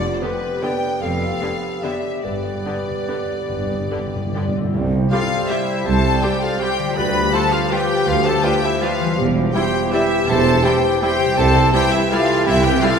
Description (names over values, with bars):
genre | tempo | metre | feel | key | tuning
classical, orchestral ballroom waltz | 135-177 BPM | 3/4 | rubato | C major | A4 = 441 Hz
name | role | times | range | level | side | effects
clear symphonic violin section | melody | 0.0-13.0 s | B4 to B5 | -24 LUFS | left 4 dB | none
concert flute | second line | 0.0-13.0 s | G4 to G5 | -26 LUFS | equal | none
mellow clarinet | second line | 0.0-13.0 s | F4 to C5 | -29 LUFS | equal | none
mellow French horn section | sustained chords | 0.0-13.0 s | E3 to G4 | -26 LUFS | equal | none
concert harp | arpeggios | 0.0-13.0 s | F2 to D5 | -28 LUFS | left 4 dB | none
rich symphonic cello section | bass | 0.0-12.8 s | C2 to C3 | -26 LUFS | right 3 dB | none
rich symphonic double bass section | bass | 0.0-12.8 s | E1 to D2 | -26 LUFS | right 3 dB | none
warm symphonic violin section | second line | 0.2-13.0 s | D4 to B5 | -27 LUFS | left 2 dB | none
clear symphonic viola section | accompaniment | 0.2-12.9 s | D3 to G4 | -28 LUFS | right 1 dB | none
timpani | percussion | 2.2-5.3 s | G2 to C3 | -26 LUFS | right 2 dB | none
mellow bassoon | accompaniment | 4.7-13.0 s | E3 to G3 | -27 LUFS | right 2 dB | none
mellow tuba | bass | 4.7-12.8 s | E1 to D2 | -27 LUFS | right 3 dB | none
clear trumpet section | stabs | 5.1-13.0 s | E4 to B4 | -24 LUFS | equal | none
room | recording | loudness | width
wet concert hall reverb, RT60 1.9 s | recorded in a church or concert hall | -16 LUFS | side -6 dB against mid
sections
0.0-4.8 A section; 4.8-13.0 B section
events
timpani fill 2.2-4.8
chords
0.0 G7/F; 2.2 G; 4.8 C; 7.0 G7/D; 9.2 C/E; 11.4 C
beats
0.22 0.63 | 1.02 1.42 1.83 | 2.24 2.65 3.09 | 3.50 3.92 4.35 | 4.75 5.12 5.50 | 5.86 6.23 6.61 | 6.97 7.33 7.71 | 8.07 8.44 8.82 | 9.18 9.54 9.93 | 10.28 10.65 11.02 | 11.38 11.74 12.11 | 12.47 12.82